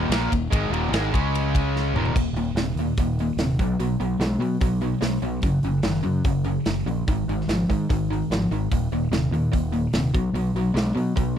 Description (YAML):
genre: classic rock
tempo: 146 BPM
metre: 4/4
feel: straight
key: unclear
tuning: A4 = 440 Hz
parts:
  - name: distorted electric guitar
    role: riff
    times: 0.0-11.4 s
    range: Eb2 to Db4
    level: -24 LUFS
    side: equal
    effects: distortion
  - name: growling fingered electric bass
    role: bass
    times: 0.0-11.4 s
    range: Eb1 to B2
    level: -26 LUFS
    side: equal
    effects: overdrive
  - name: big rock drum kit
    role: drums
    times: 0.1-11.3 s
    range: crash cymbal, hi-hat, kick drum, ride cymbal, snare drum, toms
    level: -26 LUFS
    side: equal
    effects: none
room: little or no reverb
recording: dry, close 1970s-style studio recording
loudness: -21 LUFS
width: side -9 dB against mid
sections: 0.0-2.1 A section; 2.1-11.4 B section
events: drum fill 1.7-2.1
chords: 0.0 Eb5; 1.1 Db5; 1.9 Eb5; 3.6 B5; 5.4 Gb5; 7.1 Ab5; 8.7 Eb5; 10.1 B5